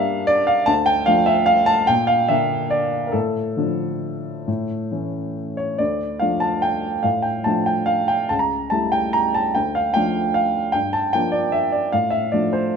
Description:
classical, piano waltz; 132-159 BPM; 3/4; rubato; D minor; A4 = 442 Hz
warm upright piano; solo; 0.0-12.8 s; C#2 to Bb5; -18 LUFS; equal
moderate recital hall reverb, RT60 1.6 s; close, detailed microphones; -18 LUFS; side -6 dB against mid
0.0-12.8 A section
0.0 Gm; 0.7 Dm; 1.9 Bb6; 3.1 Dm/A; 4.5 A; 5.8 Dm; 8.3 A7/C#; 9.5 Dm; 10.7 Gm7; 11.9 Dm/A

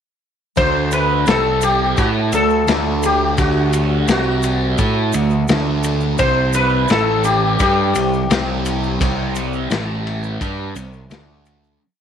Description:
psychedelic rock; 86 BPM; 4/4; straight; D mixolydian; A4 = 436 Hz
sitar; melody; 0.6-11.1 s; F#4 to C5; -19 LUFS; left 2 dB; slapback echo
thick fuzz guitar; riff; 0.6-11.8 s; A2 to A4; -20 LUFS; right 1 dB; distortion, phaser
growling picked electric bass; bass; 0.6-11.8 s; A1 to A2; -21 LUFS; right 1 dB; overdrive
crunchy breakbeat drum kit; drums; 0.6-11.6 s; kick drum, ride cymbal, snare drum; -22 LUFS; left 2 dB
egg shaker; percussion; 0.6-11.7 s; -32 LUFS; right 20 dB
light reverb, studio reverb; 1960s-style stereo; -15 LUFS; side -8 dB against mid
0.6-11.8 groove
fade-out 9.0-11.8
0.6 D5; 1.3 C5; 2.0 D; 4.1 C5; 4.8 D; 6.2 C5; 6.9 A5; 7.6 Csus2; 9.7 A5; 10.4 Csus2; 11.1 D5

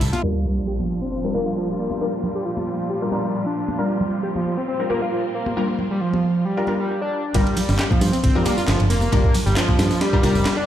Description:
breakbeat, breaks; 135 BPM; 4/4; swing 54% on 16ths; G minor; A4 = 440 Hz
clear studio string section; sustained chords; 0.0-6.9 s; Bb2 to A4; -30 LUFS; right 1 dB; sidechain pumping
modern bright fingered electric bass; bass; 0.0-0.1, 7.3-10.4 s; F1 to G2; -20 LUFS; equal
breakbeat sampler-style drum kit; drums; 0.0-0.2, 7.3-10.6 s; hi-hat, kick drum, ride cymbal, snare drum; -21 LUFS; equal
garage drum kit; drums; 0.0-0.2, 7.3-10.6 s; handclaps, ride cymbal, tambourine; -30 LUFS; right 1 dB
overdriven synth lead; riff; 0.1-10.7 s; F3 to G4; -23 LUFS; right 1 dB; chorus, cassette tape, dub echo
congas; percussion; 0.1-10.3 s; -31 LUFS; left 2 dB
orchestra-hit-like synth stab; stabs; 0.2-10.4 s; G3 to Bb4; -26 LUFS; left 2 dB; built-in reverb, dub echo
sub drop; sound effects; 0.2-2.0 s; -27 LUFS; equal
moderate lush hall reverb, RT60 2.1 s; played on a big sound system in a bare room, stone room reverb, low-pass filter; -19 LUFS; side -11 dB against mid
0.2-7.3 A section; 7.3-10.7 B section
impact 0.2-2.0; filter sweep on analog synth lead 0.2-7.3; filter sweep on synth stab 0.2-7.3; filter sweep 0.2-7.3; break 6.9-7.3; drop 7.3-10.7
0.2 Gm7

